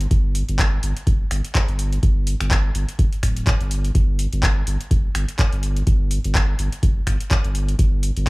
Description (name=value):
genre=acid house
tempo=125 BPM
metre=4/4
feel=swing 57% on 16ths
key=unclear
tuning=A4 = 440 Hz
part: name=saturated sub bass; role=bass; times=0.0-8.3 s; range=D1 to G1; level=-22 LUFS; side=equal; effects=sidechain pumping
part: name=booming analog drum machine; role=drums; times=0.0-8.3 s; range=finger snaps, handclaps, hi-hat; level=-26 LUFS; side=equal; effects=none
part: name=electronic kick drum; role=drums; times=0.1-8.3 s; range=none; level=-19 LUFS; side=equal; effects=none
room=little or no reverb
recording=small room ambience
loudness=-18 LUFS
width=side -24 dB against mid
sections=0.0-8.3 A section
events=none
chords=none